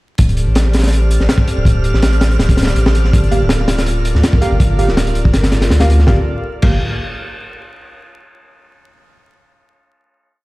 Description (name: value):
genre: drum and bass, jungle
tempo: 163 BPM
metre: 4/4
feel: swing 53% on 16ths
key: G minor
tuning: A4 = 440 Hz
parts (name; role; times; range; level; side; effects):
- airy breathy pad; sustained chords; 0.2-6.2 s; F4 to D5; -24 LUFS; equal; chorus
- saturated sub bass; bass; 0.2-6.8 s; D1 to D2; -14 LUFS; equal; none
- crunchy breakbeat drum kit; drums; 0.2-6.7 s; crash cymbal, hi-hat, kick drum, snare drum; -15 LUFS; equal; none
- wind-like tuned noise texture; texture; 0.6-6.1 s; F6; -29 LUFS; right 3 dB; built-in reverb
- deep mellow chord stab; stabs; 3.3-6.8 s; Bb3 to F5; -22 LUFS; right 2 dB; chorus, dub echo
room: small room ambience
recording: played on a big sound system in a bare room, large studio reverb, vinyl crackle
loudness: -11 LUFS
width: side -20 dB against mid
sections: 0.2-6.1 drop; 6.1-7.5 final chord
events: drop 0.2-6.1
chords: 0.2 D7sus4; 3.1 Gm7